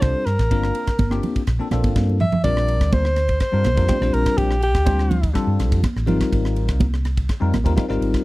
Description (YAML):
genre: electric jazz fusion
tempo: 124 BPM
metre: 4/4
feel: straight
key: unclear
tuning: A4 = 441 Hz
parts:
  - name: mellow soprano saxophone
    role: melody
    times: 0.0-5.3 s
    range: G4 to E5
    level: -23 LUFS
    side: equal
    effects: slapback echo
  - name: bell-like tine electric piano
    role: accompaniment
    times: 0.0-8.2 s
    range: G3 to C5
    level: -24 LUFS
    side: left 3 dB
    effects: phaser
  - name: hollow-body short-scale fingered electric bass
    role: bass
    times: 0.0-8.1 s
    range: G1 to G2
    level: -21 LUFS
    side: equal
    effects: none
  - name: crisp fusion drum kit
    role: drums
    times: 0.0-8.2 s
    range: kick drum, ride cymbal, rim click, snare drum, toms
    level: -23 LUFS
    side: equal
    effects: none
  - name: congas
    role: percussion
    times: 0.0-7.9 s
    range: none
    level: -25 LUFS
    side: right 3 dB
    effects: none
room: studio ambience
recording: dry, close 1970s-style studio recording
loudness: -17 LUFS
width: side -19 dB against mid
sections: 0.0-2.4 A section; 2.4-8.2 B section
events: drum fill 1.8-2.4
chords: 0.0 C7sus4; 0.5 Gm11; 2.4 Bb69; 6.1 Abmaj13